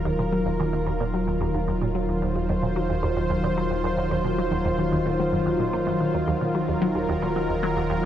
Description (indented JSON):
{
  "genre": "ambient, sequencer-driven space music",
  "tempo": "111 BPM",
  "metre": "4/4",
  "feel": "straight",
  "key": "Eb dorian",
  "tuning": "A4 = 440 Hz",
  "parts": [
    { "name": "lush unison pad", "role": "sustained chords", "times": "0.0-8.1 s", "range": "Eb3 to C5", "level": "-24 LUFS", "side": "equal", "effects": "chorus" },
    { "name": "warm sub bass", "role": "bass", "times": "0.0-8.1 s", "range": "Eb1", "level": "-32 LUFS", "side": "equal", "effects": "none" },
    { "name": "resonant blip pluck", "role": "riff", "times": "0.1-8.0 s", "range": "Eb2 to Bb3", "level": "-27 LUFS", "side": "right 1 dB", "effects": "phaser, tape echo" }
  ],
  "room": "wet huge ambient reverb, RT60 8.6 s",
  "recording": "none",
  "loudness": "-22 LUFS",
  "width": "side -10 dB against mid",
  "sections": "0.0-8.1 A section",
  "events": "none",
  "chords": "0.0 Ebmadd9"
}